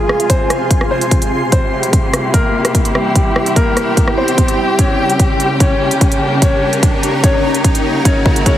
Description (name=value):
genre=heavy wobble dubstep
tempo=147 BPM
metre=4/4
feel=half-time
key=unclear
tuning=A4 = 440 Hz
part: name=clear grand piano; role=melody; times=0.0-8.6 s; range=G3 to Db5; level=-19 LUFS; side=left 2 dB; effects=dub echo
part: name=dark chamber string section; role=sustained chords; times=0.0-8.6 s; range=C3 to Ab4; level=-19 LUFS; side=equal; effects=sidechain pumping, low-pass filter
part: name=riser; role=sound effects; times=0.9-8.6 s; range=none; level=-24 LUFS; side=equal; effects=none
part: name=granular cloud pad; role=texture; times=0.0-8.6 s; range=Db4 to C6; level=-20 LUFS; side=right 1 dB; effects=built-in reverb, sidechain pumping
part: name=dubstep drum kit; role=drums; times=0.1-8.5 s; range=hi-hat, rim click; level=-19 LUFS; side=right 1 dB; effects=studio reverb
part: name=electronic kick drum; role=drums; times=0.3-8.5 s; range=none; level=-14 LUFS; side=equal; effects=studio reverb
room=light reverb, digital ambience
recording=heavily compressed radio sound, multiband compression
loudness=-11 LUFS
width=side -12 dB against mid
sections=0.0-8.6 A section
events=build-up 0.0-8.6; filter sweep on string section 0.0-8.6; riser 0.9-8.6; drum fill 4.8-8.6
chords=0.0 Fm; 1.5 C; 4.8 Gdim; 8.1 Gbadd9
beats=0.30 0.71 1.11 | 1.52 1.93 2.34 2.75 | 3.15 3.56 3.97 4.38 | 4.79 5.20 5.60 6.01 | 6.42 6.83 7.24 7.64 | 8.05 8.46